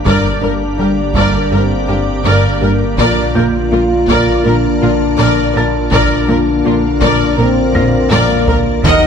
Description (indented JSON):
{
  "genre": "cinematic, hybrid orchestral and electronic film score",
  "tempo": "82 BPM",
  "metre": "4/4",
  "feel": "straight",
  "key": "unclear",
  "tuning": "A4 = 440 Hz",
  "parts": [
    { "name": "mellow French horn section", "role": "sustained chords", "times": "0.0-9.1 s", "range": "Bb3 to F4", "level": "-17 LUFS", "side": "left 4 dB", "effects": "none" },
    { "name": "mellow trombone section", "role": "sustained chords", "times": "0.0-9.1 s", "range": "D3 to Bb3", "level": "-23 LUFS", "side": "right 4 dB", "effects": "none" },
    { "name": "organ-like drone", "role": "sustained chords", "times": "0.0-9.1 s", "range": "Bb3 to Eb5", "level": "-21 LUFS", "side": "equal", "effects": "ensemble chorus, built-in reverb" },
    { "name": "sub bass with octave", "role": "bass", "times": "0.0-9.1 s", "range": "Eb1 to Bb1", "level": "-21 LUFS", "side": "equal", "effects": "none" },
    { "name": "felt-muted upright piano", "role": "texture", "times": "0.0-9.1 s", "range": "A5 to Bb6", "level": "-28 LUFS", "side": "right 1 dB", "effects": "none" },
    { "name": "warm symphonic violin section", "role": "melody", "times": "0.1-9.1 s", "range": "F4 to Gb5", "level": "-22 LUFS", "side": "left 5 dB", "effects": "none" },
    { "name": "warm symphonic violin section", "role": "second line", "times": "0.1-9.1 s", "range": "F4 to Eb5", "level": "-20 LUFS", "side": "left 2 dB", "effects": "none" },
    { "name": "warm symphonic viola section", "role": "accompaniment", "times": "0.1-9.1 s", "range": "Bb4", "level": "-20 LUFS", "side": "right 1 dB", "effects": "none" },
    { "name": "thumb-piano-like synth pluck", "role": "arpeggios", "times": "0.1-9.1 s", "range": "Eb3 to Bb4", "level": "-25 LUFS", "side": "right 4 dB", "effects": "none" },
    { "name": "rubbery square bass", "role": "riff", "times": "0.1-9.1 s", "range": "Eb2 to Bb3", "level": "-20 LUFS", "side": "left 2 dB", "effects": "none" },
    { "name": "rich symphonic cello section", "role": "bass", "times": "0.1-8.9 s", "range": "G2 to Eb3", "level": "-21 LUFS", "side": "right 3 dB", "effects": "none" },
    { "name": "rich symphonic double bass section", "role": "bass", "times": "0.1-8.9 s", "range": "G1 to Eb2", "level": "-21 LUFS", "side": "right 4 dB", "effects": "none" },
    { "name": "taiko ensemble", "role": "drums", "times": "0.1-9.1 s", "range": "none", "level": "-21 LUFS", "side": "equal", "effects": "none" }
  ],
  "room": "wet concert hall reverb, RT60 1.9 s",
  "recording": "none",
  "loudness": "-10 LUFS",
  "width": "side -7 dB against mid",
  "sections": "0.0-9.1 A section",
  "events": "drum fill 7.7-8.8",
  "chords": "0.0 Gm; 3.0 Bb"
}